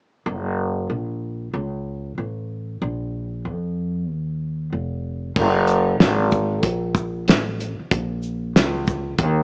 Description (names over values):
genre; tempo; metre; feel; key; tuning
hip hop, jazz-hop; 94 BPM; 4/4; swing 63% on 16ths; F# major; A4 = 440 Hz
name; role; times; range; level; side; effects
upright bass; bass; 0.3-9.4 s; E#1 to E#2; -22 LUFS; equal; none
cloth-damped thuddy drum kit; drums; 5.4-9.4 s; crash cymbal, hi-hat, kick drum, shaker, snare drum; -18 LUFS; equal; vintage 12-bit sampler grit
room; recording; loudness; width
light reverb; worn, warbling old tape, cassette tape, warbly pitch drift, small speaker sound; -20 LUFS; side -39 dB against mid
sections
0.3-5.4 A section; 5.4-9.4 B section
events
none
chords
none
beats
| 0.25 0.89 1.53 2.17 | 2.81 3.45 4.08 4.72 | 5.36 6.00 6.64 7.28 | 7.91 8.55 9.19